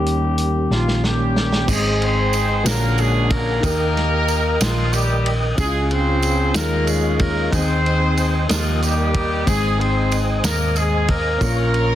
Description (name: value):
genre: slow gospel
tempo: 62 BPM (dotted quarters)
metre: 6/8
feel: straight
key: Ab major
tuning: A4 = 440 Hz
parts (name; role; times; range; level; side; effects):
- growling trumpet; melody; 0.0-1.0 s; G4; -25 LUFS; left 2 dB; none
- dark concert grand piano; accompaniment; 0.0-11.9 s; Ab2 to C#5; -25 LUFS; left 2 dB; none
- percussive tonewheel organ; sustained chords; 0.0-11.9 s; Eb3 to Eb6; -26 LUFS; right 1 dB; slow rotary speaker, chorus vibrato
- hollow-body short-scale fingered electric bass; bass; 0.0-11.9 s; Ab1 to Eb2; -21 LUFS; equal; none
- warm soul drum kit; drums; 0.1-11.9 s; crash cymbal, hi-hat, kick drum, ride cymbal, snare drum; -24 LUFS; equal; none
- mellow horn section; melody; 0.7-11.9 s; F3 to C5; -22 LUFS; equal; none
- tambourine; percussion; 1.7-11.7 s; none; -30 LUFS; right 9 dB; none
room: light reverb, studio ambience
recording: dense, heavily limited modern master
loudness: -16 LUFS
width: side -12 dB against mid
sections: 0.0-1.7 A section; 1.7-11.9 B section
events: drum fill 0.7-1.7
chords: 0.0 Eb7; 1.7 Ab; 2.7 Bb7alt; 3.6 Eb; 5.6 Db; 6.6 Eb9sus4; 7.5 Ab/Eb; 8.5 Eb; 9.5 Ab; 11.4 Bbm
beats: 0.71 | 1.68 2.66 | 3.63 4.61 | 5.58 6.55 | 7.53 8.50 | 9.47 10.44 | 11.41